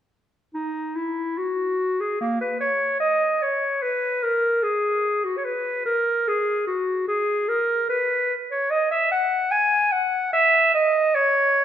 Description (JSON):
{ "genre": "classical, baroque-style fantasia for unaccompanied clarinet", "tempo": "74 BPM", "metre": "4/4", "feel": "rubato", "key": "B major", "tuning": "A4 = 439 Hz", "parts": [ { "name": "warm clarinet", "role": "solo", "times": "0.5-11.6 s", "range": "A#3 to G#5", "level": "-20 LUFS", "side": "equal", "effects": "none" } ], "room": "moderate scoring stage reverb, RT60 1.9 s", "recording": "minimal, uncompressed stereo recording", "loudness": "-20 LUFS", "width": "side -10 dB against mid", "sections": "0.5-11.6 A section", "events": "none", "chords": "none" }